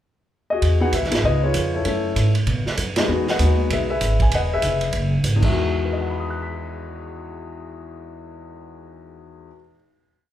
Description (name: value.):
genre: jazz piano trio.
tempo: 195 BPM.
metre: 4/4.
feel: swing 61% on 8ths.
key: E major.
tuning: A4 = 440 Hz.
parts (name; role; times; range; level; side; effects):
warm concert grand piano; melody; 0.5-9.8 s; E2 to B6; -24 LUFS; left 3 dB; none.
upright bass; bass; 0.6-9.5 s; E1 to B2; -22 LUFS; equal; none.
vintage drum kit; drums; 0.6-5.5 s; crash cymbal, hi-hat, kick drum, ride cymbal, snare drum; -25 LUFS; right 2 dB; none.
room: moderate large studio reverb, RT60 1.1 s.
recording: band playing live in one room.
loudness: -18 LUFS.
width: side -12 dB against mid.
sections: 0.0-0.6 pickup bar; 0.6-5.5 A section; 5.5-8.0 final chord.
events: band accent 2.9.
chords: 0.0 N.C.; 0.6 Emaj9; 1.2 C#7; 1.9 F#m9; 2.5 B6; 3.1 Emaj9.